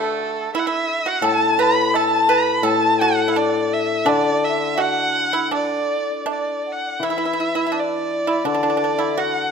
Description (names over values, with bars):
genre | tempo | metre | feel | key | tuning
chinese traditional, Chinese chamber ensemble | 84 BPM | 4/4 | rubato | D gong mode | A4 = 440 Hz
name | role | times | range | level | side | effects
warm erhu | melody | 0.0-9.5 s | A4 to B5 | -21 LUFS | right 2 dB | none
pipa | second line | 0.0-9.5 s | A3 to B4 | -24 LUFS | right 6 dB | none
hammered dulcimer | accompaniment | 0.0-9.5 s | A2 to E3 | -23 LUFS | left 6 dB | none
large dizi | second line | 1.2-9.5 s | D5 to B5 | -25 LUFS | left 6 dB | none
woodblock | percussion | 1.2-6.4 s | none | -31 LUFS | left 5 dB | none
room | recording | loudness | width
moderate recital hall reverb, RT60 1.6 s | none | -17 LUFS | side -6 dB against mid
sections
0.0-7.0 A section; 7.0-9.5 B section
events
none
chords
none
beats
0.52 | 1.23 1.94 2.65 3.36 | 4.07 4.78 5.51 6.26 | 7.01 7.75 8.47 9.19